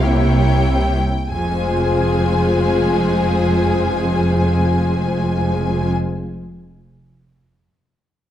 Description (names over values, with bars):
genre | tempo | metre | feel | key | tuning
classical, slow romantic movement for string orchestra | free time | none | none | F minor | A4 = 441 Hz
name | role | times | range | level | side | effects
clear studio violin section | melody | 0.0-5.9 s | G5 to Ab5 | -25 LUFS | left 3 dB | none
warm studio violin section | second line | 0.0-5.9 s | G4 to Db5 | -25 LUFS | left 4 dB | none
warm studio viola section | accompaniment | 0.0-5.9 s | Ab3 to F4 | -21 LUFS | left 1 dB | none
rich studio cello section | bass | 0.0-5.9 s | F2 to C3 | -21 LUFS | equal | none
warm studio double bass section | bass | 0.0-5.9 s | F1 to C2 | -20 LUFS | right 1 dB | none
room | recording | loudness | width
moderate recital hall reverb, RT60 1.5 s | close, detailed microphones | -15 LUFS | side -11 dB against mid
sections
0.0-1.3 A section; 1.3-5.2 B section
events
slowing down 0.0-1.3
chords
0.0 C7b9; 1.3 Fm